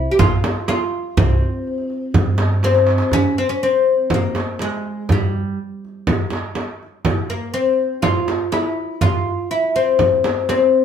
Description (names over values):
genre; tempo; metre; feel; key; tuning
Arabic maqam ensemble; 122 BPM; 4/4; straight; C maqam hijaz; A4 = 441 Hz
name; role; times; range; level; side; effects
oud; melody; 0.0-10.8 s; G3 to G4; -18 LUFS; left 3 dB; none
upright bass; bass; 0.0-3.0 s; Bb1 to G2; -19 LUFS; right 1 dB; none
darbuka; percussion; 0.1-10.8 s; none; -22 LUFS; right 1 dB; none
frame drum; percussion; 0.2-10.6 s; none; -20 LUFS; right 2 dB; none
room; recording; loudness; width
wet studio reverb, RT60 0.8 s; band playing live in one room; -16 LUFS; side -8 dB against mid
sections
0.0-3.1 A section; 3.1-10.8 B section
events
drum fill 2.6-3.1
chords
none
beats
0.19 0.68 | 1.17 1.66 2.15 2.64 | 3.13 3.62 4.11 4.60 | 5.09 5.58 6.07 6.56 | 7.05 7.54 8.04 8.53 | 9.02 9.51 10.00 10.49